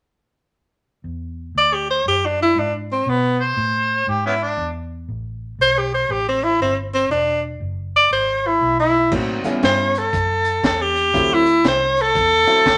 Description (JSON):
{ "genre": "electric blues shuffle", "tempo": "119 BPM", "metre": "4/4", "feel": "swing 63% on 8ths", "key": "unclear", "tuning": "A4 = 445 Hz", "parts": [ { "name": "vintage muted fingered electric bass", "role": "bass", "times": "1.0-12.8 s", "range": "E1 to B2", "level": "-30 LUFS", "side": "equal", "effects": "none" }, { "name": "bright tenor saxophone", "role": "melody", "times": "1.6-12.8 s", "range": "B3 to D5", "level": "-18 LUFS", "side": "equal", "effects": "none" }, { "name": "clear harmonica", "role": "second line", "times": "3.4-4.7 s", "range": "B3 to C5", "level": "-22 LUFS", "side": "equal", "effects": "overdrive" }, { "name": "warm upright piano", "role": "accompaniment", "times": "9.1-12.6 s", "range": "F#3 to E4", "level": "-26 LUFS", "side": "equal", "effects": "none" }, { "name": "crunchy breakbeat drum kit", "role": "drums", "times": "9.1-12.8 s", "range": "crash cymbal, hi-hat, kick drum, snare drum", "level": "-26 LUFS", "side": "equal", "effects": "none" } ], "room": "moderate studio reverb, RT60 0.8 s", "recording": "none", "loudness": "-18 LUFS", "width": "mono", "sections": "1.0-9.1 A section; 9.1-12.8 B section", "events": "none", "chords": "1.0 E7; 5.1 Gadd9; 7.1 E; 9.1 A7; 11.1 D7", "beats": "| 1.04 1.55 2.05 2.56 | 3.06 3.57 4.07 4.58 | 5.08 5.59 6.09 6.60 | 7.10 7.61 8.11 8.62 | 9.12 9.63 10.13 10.63 | 11.14 11.64 12.15 12.65" }